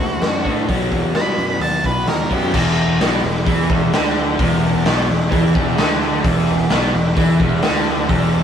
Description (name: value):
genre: blues rock power trio and southern rock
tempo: 130 BPM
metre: 4/4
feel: straight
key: E minor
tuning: A4 = 440 Hz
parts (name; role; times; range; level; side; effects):
- octave-fuzz lead guitar; melody; 0.0-2.5 s; F#4 to B5; -23 LUFS; right 1 dB; distortion
- crunchy overdriven guitar; riff; 0.0-8.4 s; E2 to D4; -20 LUFS; equal; none
- fuzz fingered electric bass; bass; 0.0-8.4 s; E1 to A2; -20 LUFS; left 1 dB; overdrive
- raw garage drum kit; drums; 0.2-8.2 s; crash cymbal, hi-hat, kick drum, snare drum; -19 LUFS; equal; none
- overdriven tonewheel organ; sustained chords; 2.6-8.4 s; E4 to G5; -30 LUFS; right 1 dB; none
room: light reverb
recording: rough rehearsal-room recording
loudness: -14 LUFS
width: side -8 dB against mid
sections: 0.0-2.5 A section; 2.5-8.4 B section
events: none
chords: 0.0 D; 0.7 B; 2.5 Em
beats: 0.22 | 0.68 1.15 1.61 2.08 | 2.54 3.01 3.47 3.93 | 4.40 4.86 5.32 5.79 | 6.25 6.71 7.17 7.63 | 8.10